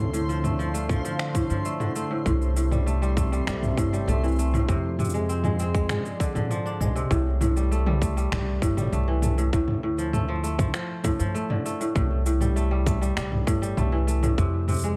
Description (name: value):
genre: folktronica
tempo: 99 BPM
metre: 4/4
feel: straight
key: C major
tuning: A4 = 440 Hz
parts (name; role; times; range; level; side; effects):
- warm analog pad; sustained chords; 0.0-7.1 s; C3 to F5; -35 LUFS; equal; subtle chorus
- kora; arpeggios; 0.0-15.0 s; A2 to D4; -30 LUFS; equal; vintage 12-bit sampler grit, tape echo
- upright bass; bass; 0.0-15.0 s; G1 to B2; -28 LUFS; equal; none
- backwards swelling texture; texture; 0.0-7.1 s; C5 to C6; -44 LUFS; equal; built-in reverb
- organic electronic drum kit; drums; 0.1-15.0 s; cabasa, finger snaps, toms; -32 LUFS; equal; overdrive
- electronic kick drum; drums; 0.9-14.5 s; none; -29 LUFS; equal; overdrive
room: digital ambience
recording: vinyl crackle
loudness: -25 LUFS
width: mono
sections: 0.0-7.1 A section; 7.1-15.0 B section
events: kick drops out 6.5-7.1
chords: 0.0 Dm7; 2.3 C6; 4.7 Fm6; 7.1 C6; 9.5 Dm; 12.0 C6; 14.4 Fm